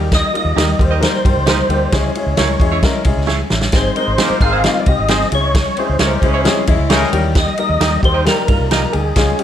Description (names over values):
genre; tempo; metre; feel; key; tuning
uptempo 1960s-style soul; 133 BPM; 4/4; straight; unclear; A4 = 440 Hz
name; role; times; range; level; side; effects
warm baby grand piano; accompaniment; 0.0-9.4 s; G3 to Ab5; -21 LUFS; left 3 dB; none
vintage muted fingered electric bass; bass; 0.0-9.3 s; Ab1 to G2; -19 LUFS; equal; none
percussive tonewheel organ; melody; 0.1-9.4 s; Ab4 to F5; -19 LUFS; equal; chorus vibrato, slow rotary speaker
vintage drum kit; drums; 0.1-9.4 s; kick drum, ride cymbal, snare drum; -17 LUFS; equal; none
direct-recorded clean electric guitar; stabs; 0.6-8.8 s; C4 to Eb5; -23 LUFS; right 7 dB; harmonic tremolo
warm horn section; second line; 4.0-7.2 s; Eb3 to C5; -23 LUFS; left 1 dB; none
archtop guitar, miked and amplified; riff; 6.5-7.3 s; Fb3 to Ab4; -23 LUFS; left 6 dB; none
room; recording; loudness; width
moderate large studio reverb, RT60 1.4 s; none; -12 LUFS; side -10 dB against mid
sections
0.0-9.4 A section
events
drum fill 3.3-3.7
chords
0.0 Eb; 1.9 Dbm; 3.7 Ab; 5.3 Dbm; 7.1 Eb